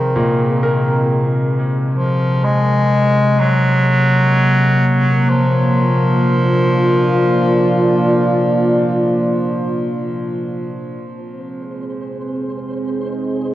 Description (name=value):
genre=dark ambient drone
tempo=63 BPM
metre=4/4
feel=straight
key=unclear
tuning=A4 = 441 Hz
part: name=bright bass clarinet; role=melody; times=0.0-10.1 s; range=Eb3 to Ab3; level=-18 LUFS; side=equal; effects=tape echo
part: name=dark analog pad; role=sustained chords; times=0.0-13.5 s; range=Bb3 to Eb5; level=-19 LUFS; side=right 1 dB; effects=chorus
part: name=deep rumbling drone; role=drone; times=0.0-13.5 s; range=F2 to C3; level=-17 LUFS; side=equal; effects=built-in reverb
part: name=clear concert grand piano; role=arpeggios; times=0.2-6.3 s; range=Bb2 to Bb4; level=-23 LUFS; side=left 1 dB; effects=tape echo
part: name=flickering grainy texture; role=texture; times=11.2-13.5 s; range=C5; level=-33 LUFS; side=equal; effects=built-in reverb
room=wet cathedral reverb, RT60 5.1 s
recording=worn, warbling old tape, cassette tape, warbly pitch drift, nothing above 8.0 kHz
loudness=-13 LUFS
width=side -14 dB against mid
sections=0.0-11.0 A section; 11.0-13.5 B section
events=fade-in on analog synth pad 0.0-11.0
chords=0.0 Ab; 3.4 Bb; 11.0 Ab